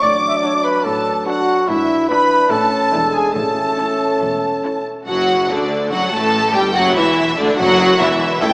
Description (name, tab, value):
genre	quick classical-period movement for symphony orchestra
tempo	144 BPM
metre	4/4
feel	straight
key	A major, D major from 5.1 s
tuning	A4 = 440 Hz
part	rich studio violin section	second line	0.0-8.5 s	D4 to D6	-23 LUFS	equal	none
part	mellow French horn section	sustained chords	0.0-4.9 s	E3 to D4	-26 LUFS	equal	none
part	dark trumpet	stabs	0.0-4.8 s	E4 to E5	-20 LUFS	equal	none
part	clear studio double bass section	bass	0.0-8.5 s	E1 to D2	-31 LUFS	equal	none
part	rich studio cello section	bass	0.0-8.5 s	C#2 to A2	-28 LUFS	equal	none
part	timpani	percussion	0.0-0.6, 3.4-4.0 s	A2	-37 LUFS	equal	none
part	rich studio violin section	melody	0.4-8.5 s	D5 to B5	-22 LUFS	equal	none
part	rich studio viola section	accompaniment	0.4-8.5 s	D3 to F#4	-22 LUFS	equal	none
room	wet concert hall reverb, RT60 1.9 s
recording	small speaker sound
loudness	-16 LUFS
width	mono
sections	0.0-5.1 A section; 5.1-8.5 B section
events	none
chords	0.0 D/A; 1.7 E7/G#; 2.5 A; 2.9 E7; 3.4 A; 5.1 D/F#; 6.8 Dadd9/E